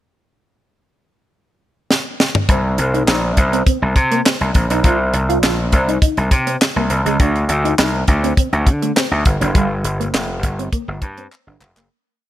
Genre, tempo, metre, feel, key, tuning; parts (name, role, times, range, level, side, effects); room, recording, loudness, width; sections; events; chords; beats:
early-eighties boogie funk; 102 BPM; 4/4; straight; A4 = 437 Hz
tight funk drum kit; drums; 1.9-11.9 s; handclaps, hi-hat, kick drum, snare drum, toms; -16 LUFS; equal
mellow electric guitar; riff; 2.5-11.9 s; G3 to F4; -23 LUFS; right 2 dB; wide subtle chorus
gritty slap bass; bass; 2.5-11.9 s; F1 to D3; -17 LUFS; equal; overdrive
studio ambience; -14 LUFS; side -13 dB against mid
0.1-2.5 pickup bar; 2.5-11.9 breakdown
drum fill 1.9-2.5, 11.3-11.9; fade-out 9.5-11.9
0.1 N.C.; 2.5 Cm7; 4.8 F5; 7.2 D5; 9.3 Gm7
| 0.14 0.72 1.31 1.90 | 2.49 3.08 3.67 4.25 | 4.84 5.43 6.02 6.61 | 7.20 7.78 8.37 8.96 | 9.55 10.14 10.72 11.31